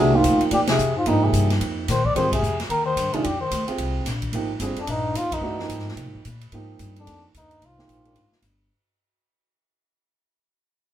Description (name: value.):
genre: modal jazz.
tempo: 220 BPM.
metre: 4/4.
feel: swing 61% on 8ths.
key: F dorian.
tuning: A4 = 440 Hz.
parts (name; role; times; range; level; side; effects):
trumpet with cup mute; melody; 0.0-8.5 s; D4 to D5; -24 LUFS; equal; none.
mellow bass clarinet; second line; 0.0-8.4 s; F2 to F3; -26 LUFS; left 3 dB; none.
warm upright piano; accompaniment; 0.0-8.2 s; Eb3 to Bb4; -25 LUFS; right 4 dB; none.
upright bass; bass; 0.0-8.7 s; G1 to C3; -26 LUFS; left 1 dB; none.
swinging big-band drum kit; drums; 0.2-8.5 s; hi-hat, kick drum, ride cymbal, snare drum; -30 LUFS; equal; none.
room: wet studio ambience, RT60 0.5 s.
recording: band playing live in one room.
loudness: -20 LUFS.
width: side -11 dB against mid.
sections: 0.0-8.7 A section.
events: fade-out 0.0-8.7; band accent 0.7, 2.3, 5.3.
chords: 0.0 Fm11.